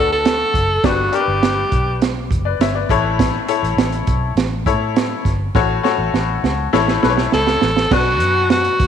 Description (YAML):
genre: uptempo 1960s-style soul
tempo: 102 BPM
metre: 4/4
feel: straight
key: unclear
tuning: A4 = 439 Hz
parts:
  - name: breathy tenor saxophone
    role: melody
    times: 0.0-2.0, 7.3-8.9 s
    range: F#4 to A4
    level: -17 LUFS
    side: equal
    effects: none
  - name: bright upright piano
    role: accompaniment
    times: 0.0-8.8 s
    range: G2 to E5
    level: -20 LUFS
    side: left 10 dB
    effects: none
  - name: vintage muted fingered electric bass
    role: bass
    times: 0.0-8.9 s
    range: F#1 to A2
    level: -22 LUFS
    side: equal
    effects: none
  - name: crunchy breakbeat drum kit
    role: drums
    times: 0.3-8.9 s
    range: crash cymbal, hi-hat, kick drum, snare drum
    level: -19 LUFS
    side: right 4 dB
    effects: none
room: moderate echo chamber reverb, RT60 2.0 s, small room ambience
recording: 1960s-style stereo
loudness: -14 LUFS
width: side -8 dB against mid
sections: 0.0-7.9 A section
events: drum fill 5.6-7.9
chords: 0.0 D; 0.8 G; 2.9 A; 5.6 F#m/A; 6.7 A; 7.9 Bm